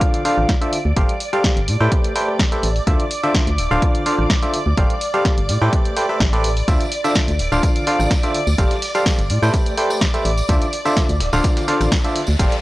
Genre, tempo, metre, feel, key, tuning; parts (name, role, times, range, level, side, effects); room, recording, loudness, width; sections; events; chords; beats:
piano house; 126 BPM; 4/4; swing 53% on 16ths; D dorian; A4 = 440 Hz
string machine, violins; sustained chords; 0.0-12.6 s; D5 to D6; -27 LUFS; equal; ensemble chorus, sidechain pumping
barking FM electric piano; riff; 0.0-12.6 s; D3 to G5; -20 LUFS; equal; chorus, sidechain pumping, tape echo
electronic kick drum; drums; 0.0-12.5 s; -18 LUFS; equal; studio reverb
punchy analog drum machine; drums; 0.0-12.6 s; hi-hat, rim click, snare drum; -24 LUFS; equal; studio reverb
organ-like FM bass; bass; 0.4-12.5 s; D1 to A2; -19 LUFS; equal; sidechain pumping
dusty soul sampler-style drum kit; drums; 6.7-12.6 s; hi-hat, snare drum; -34 LUFS; right 1 dB
tambourine; percussion; 6.7-12.6 s; -34 LUFS; right 1 dB
riser; sound effects; 10.8-12.6 s; -34 LUFS; left 1 dB
little or no reverb; dry, gritty hardware recording, transformer saturation, cassette tape; -15 LUFS; side -18 dB against mid
0.0-12.6 A section
0.0 Dm9; 1.0 G9sus4; 1.7 Am9; 2.9 Dm9; 4.8 G9sus4; 5.5 Am9; 6.7 Dm9; 8.6 G9sus4; 9.3 Am9; 10.5 Dm9
0.01 0.49 | 0.96 1.44 1.92 2.39 | 2.87 3.35 3.82 4.30 | 4.78 5.25 5.73 6.20 | 6.68 7.16 7.63 8.11 | 8.58 9.06 9.54 10.01 | 10.49 10.96 11.44 11.92 | 12.39